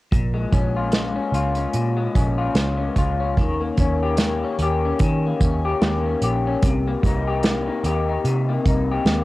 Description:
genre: indie pop, bedroom pop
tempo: 74 BPM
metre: 4/4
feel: swing 55% on 16ths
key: Bb dorian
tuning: A4 = 442 Hz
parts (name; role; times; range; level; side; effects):
- electric guitar through a small old amp; accompaniment; 0.1-9.2 s; Bb2 to G4; -23 LUFS; left 4 dB; analog chorus, warbly pitch drift, cassette tape
- vintage muted picked electric bass; bass; 0.1-9.2 s; Bb1 to Eb3; -23 LUFS; right 1 dB; none
- unplugged drum kit; drums; 0.1-9.2 s; hi-hat, kick drum, snare drum; -21 LUFS; right 1 dB; cassette tape
room: light reverb, small room ambience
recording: home recording on cassette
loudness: -18 LUFS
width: side -18 dB against mid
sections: 0.1-9.2 A section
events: none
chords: 0.1 Bbm7; 3.4 Eb7; 6.6 Cm7

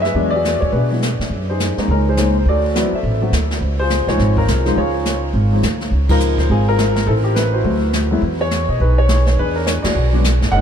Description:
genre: jazz piano trio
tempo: 208 BPM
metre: 4/4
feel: swing 62% on 8ths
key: unclear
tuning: A4 = 440 Hz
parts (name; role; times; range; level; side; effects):
- warm grand piano; melody; 0.0-10.6 s; F3 to Gb5; -18 LUFS; left 2 dB; wide subtle chorus, analog delay
- upright bass; bass; 0.0-10.6 s; Gb1 to B2; -17 LUFS; right 1 dB; none
- jazz brush drum kit; drums; 0.0-10.6 s; brushed snare drum, hi-hat, kick drum, ride cymbal, snare drum; -24 LUFS; right 1 dB; none
room: light reverb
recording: none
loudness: -14 LUFS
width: side -8 dB against mid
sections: 0.0-5.9 A section; 5.9-10.6 A section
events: band accent 6.1, 9.8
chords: 0.2 E9; 1.3 Gb69; 2.5 D13; 3.6 Dbmaj7; 7.1 Am; 7.6 D9; 8.2 Emaj7; 9.4 E9

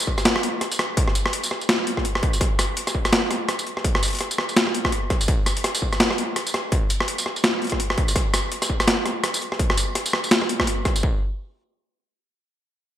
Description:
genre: drum and bass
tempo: 167 BPM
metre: 4/4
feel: swing 58% on 16ths, half-time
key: none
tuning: none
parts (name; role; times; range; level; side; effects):
- boom bap sampler-style drum kit; drums; 0.0-11.0 s; hi-hat, rim click, snare drum, tambourine; -21 LUFS; equal; overdrive, gated reverb
- electronic kick drum; drums; 0.1-11.1 s; none; -23 LUFS; equal; distortion
room: moderate plate reverb, RT60 1.2 s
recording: bright 1980s-style digital production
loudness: -20 LUFS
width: side -11 dB against mid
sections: 0.0-11.0 A section; 11.0-12.5 B section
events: none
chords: none

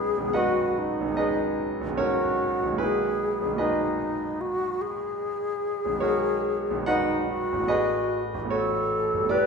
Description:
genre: classical, impressionist duo for alto flute and grand piano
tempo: 74 BPM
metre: 4/4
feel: rubato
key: unclear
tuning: A4 = 435 Hz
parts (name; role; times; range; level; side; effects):
- bright alto flute; melody; 0.0-9.5 s; D#4 to B4; -27 LUFS; left 1 dB; none
- clear concert grand piano; accompaniment; 0.0-9.5 s; G1 to F#5; -26 LUFS; right 1 dB; none
room: wet recital hall reverb, RT60 1.4 s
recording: minimal, uncompressed stereo recording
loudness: -24 LUFS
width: side -5 dB against mid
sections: 0.0-9.5 A section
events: none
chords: 0.0 B69; 2.8 G#m9/B; 6.0 B69; 7.7 A69

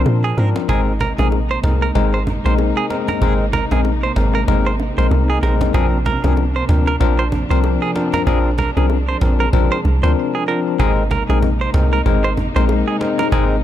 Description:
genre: afrobeats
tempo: 95 BPM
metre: 4/4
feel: swing 58% on 16ths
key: Ab lydian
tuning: A4 = 439 Hz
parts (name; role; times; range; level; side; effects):
- barky tine electric piano; accompaniment; 0.0-13.6 s; F3 to Bb4; -20 LUFS; left 7 dB; auto-pan
- dark studio string section; sustained chords; 0.0-13.6 s; C3 to Eb4; -25 LUFS; equal; none
- deep log drum bass; bass; 0.0-13.6 s; Ab1 to Bb2; -17 LUFS; right 1 dB; none
- cajon; drums; 0.1-13.6 s; none; -28 LUFS; right 1 dB; none
- bongos and congas; percussion; 0.1-13.5 s; none; -27 LUFS; right 3 dB; none
- direct-recorded clean electric guitar; riff; 0.2-13.4 s; Ab4 to C5; -24 LUFS; right 6 dB; tremolo, tape echo
room: small room ambience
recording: none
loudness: -14 LUFS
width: side -12 dB against mid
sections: 0.7-10.8 A section; 10.8-13.6 B section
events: break 10.2-10.8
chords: 0.0 Bbadd9; 0.7 Abadd9; 5.7 Bbadd9; 10.8 Abadd9

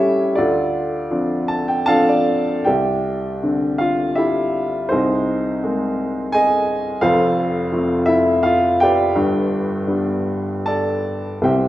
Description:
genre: classical, lyrical solo piano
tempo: 73-87 BPM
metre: 3/4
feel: rubato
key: C major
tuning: A4 = 440 Hz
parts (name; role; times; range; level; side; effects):
- clear upright piano; solo; 0.0-11.7 s; F1 to A5; -16 LUFS; equal; none
room: wet recital hall reverb, RT60 1.4 s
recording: recorded in a church or concert hall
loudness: -16 LUFS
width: side -14 dB against mid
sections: 0.0-2.7 A section; 2.7-11.7 B section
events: upright piano fill 1.1-2.7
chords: 0.4 Dm7; 2.7 Cadd9; 4.9 Abadd9/C; 7.0 F; 9.2 G

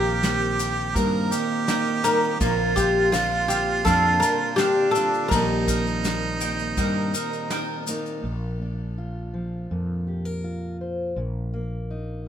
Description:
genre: acoustic folk duo or small band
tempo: 82 BPM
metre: 4/4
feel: straight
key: Bb major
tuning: A4 = 439 Hz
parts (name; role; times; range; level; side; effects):
- oud; melody; 0.0-7.4 s; F4 to Bb4; -23 LUFS; left 1 dB; none
- warm harmonica; second line; 0.0-7.9 s; D4 to Bb4; -26 LUFS; right 4 dB; none
- fingerpicked steel-string acoustic guitar; accompaniment; 0.0-12.3 s; Bb2 to C5; -31 LUFS; equal; none
- mellow tonewheel organ; sustained chords; 0.0-8.2 s; D3 to C4; -34 LUFS; right 1 dB; slow rotary speaker
- mandolin; arpeggios; 0.0-8.3 s; G3 to G5; -31 LUFS; right 3 dB; none
- mellow fretless electric bass; bass; 0.0-12.3 s; Bb1 to G2; -28 LUFS; equal; none
- soft brush drum kit; drums; 0.2-8.0 s; kick drum, ride cymbal, snare drum; -31 LUFS; equal; none
- tube shaker; percussion; 0.2-8.1 s; none; -33 LUFS; left 4 dB; none
room: moderate studio reverb, RT60 0.6 s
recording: minimal, uncompressed stereo recording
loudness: -21 LUFS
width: side -9 dB against mid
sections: 0.0-8.2 A section; 8.2-12.3 B section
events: none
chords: 0.0 Cm7/Bb; 2.4 Bbadd9; 5.3 Cm7/Bb; 8.2 Bbadd9; 11.2 Eb5/Bb

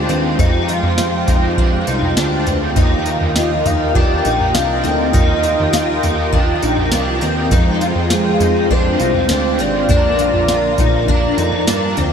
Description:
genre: dream pop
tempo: 101 BPM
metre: 4/4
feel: straight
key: Eb major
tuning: A4 = 437 Hz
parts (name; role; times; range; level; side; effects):
- overdriven electric guitar; accompaniment; 0.0-12.1 s; Bb2 to Bb4; -23 LUFS; right 5 dB; harmonic tremolo, ensemble chorus
- warm analog pad; sustained chords; 0.0-12.1 s; Ab3 to Bb5; -22 LUFS; right 2 dB; chorus
- picked twelve-string acoustic guitar; arpeggios; 0.0-12.1 s; C4 to F4; -20 LUFS; left 4 dB; ensemble chorus, ping-pong delay
- fat analog bass; bass; 0.0-12.1 s; Ab1 to G2; -21 LUFS; equal; none
- booming analog drum machine; drums; 0.1-12.1 s; kick drum, snare drum, tambourine, toms; -18 LUFS; equal; none
- soft octave-layered synth lead; melody; 3.4-11.7 s; Ab4 to G5; -20 LUFS; left 1 dB; chorus, phaser, ping-pong delay
room: moderate huge ambient reverb, RT60 8.0 s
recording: dreamy mix soaked in reverb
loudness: -13 LUFS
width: side -7 dB against mid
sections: 0.0-12.1 A section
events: none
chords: 0.0 Fmadd9; 2.8 Ebadd9; 7.5 Fmadd9; 9.9 Bb

